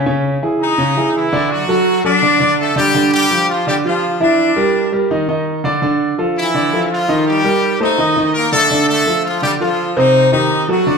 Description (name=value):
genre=latin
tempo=167 BPM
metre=4/4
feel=straight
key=unclear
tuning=A4 = 440 Hz
part: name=clear concert grand piano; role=accompaniment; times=0.0-11.0 s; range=C3 to E5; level=-15 LUFS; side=right 1 dB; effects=none
part: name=brilliant horn section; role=melody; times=0.6-11.0 s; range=E3 to Eb5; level=-16 LUFS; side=left 2 dB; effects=none
room=wet large studio reverb, RT60 1.2 s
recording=band playing live in one room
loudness=-12 LUFS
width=side -5 dB against mid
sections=0.0-11.0 A section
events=none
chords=0.1 Dbmadd9; 1.5 D; 2.9 G5; 4.4 Em7b5; 5.1 N.C.; 5.8 Dm; 7.3 Cm7; 8.0 Bbadd11; 8.7 F13; 10.1 Am7b5